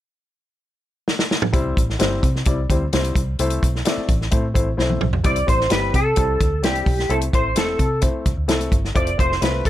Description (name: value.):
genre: uptempo 1960s-style soul.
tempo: 129 BPM.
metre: 4/4.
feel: straight.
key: C major.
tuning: A4 = 440 Hz.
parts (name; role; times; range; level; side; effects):
warm soul drum kit; drums; 1.1-9.7 s; hi-hat, kick drum, snare drum, toms; -20 LUFS; equal; none.
warm upright piano; accompaniment; 1.5-9.7 s; G3 to D5; -25 LUFS; left 3 dB; none.
vintage muted fingered electric bass; bass; 1.5-9.7 s; E1 to C3; -23 LUFS; equal; none.
electric guitar through a small old amp; melody; 5.3-9.7 s; G4 to D5; -21 LUFS; equal; ensemble chorus.
room: small room ambience.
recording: none.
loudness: -17 LUFS.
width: side -13 dB against mid.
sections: 0.0-1.5 A section; 1.5-5.2 B section; 5.2-9.7 C section.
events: drum fill 1.1-1.5, 4.8-5.2.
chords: 0.0 N.C.; 1.5 C; 3.4 Am; 5.2 C; 7.1 Am; 9.0 F.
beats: 0.14 0.60 1.07 | 1.53 2.00 2.46 2.93 | 3.39 3.86 4.32 4.79 | 5.25 5.71 6.18 6.64 | 7.11 7.57 8.03 8.50 | 8.96 9.42.